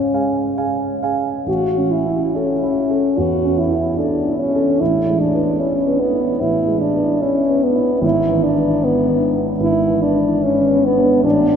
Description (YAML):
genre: classical, romantic duo for French horn and grand piano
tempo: 74 BPM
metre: 4/4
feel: uneven beats, rubato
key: A major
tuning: A4 = 440 Hz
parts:
  - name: dark French horn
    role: melody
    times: 0.0-11.6 s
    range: B3 to F#4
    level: -16 LUFS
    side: equal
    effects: none
  - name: dark concert grand piano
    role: accompaniment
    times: 0.0-11.6 s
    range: G#1 to Ab5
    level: -20 LUFS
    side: right 2 dB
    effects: none
room: wet cathedral reverb, RT60 6.7 s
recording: none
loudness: -15 LUFS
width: side -7 dB against mid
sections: 0.0-1.5 A section; 1.5-11.6 B section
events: none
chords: 0.0 Db; 1.5 A; 4.8 E/A; 8.0 E7/G#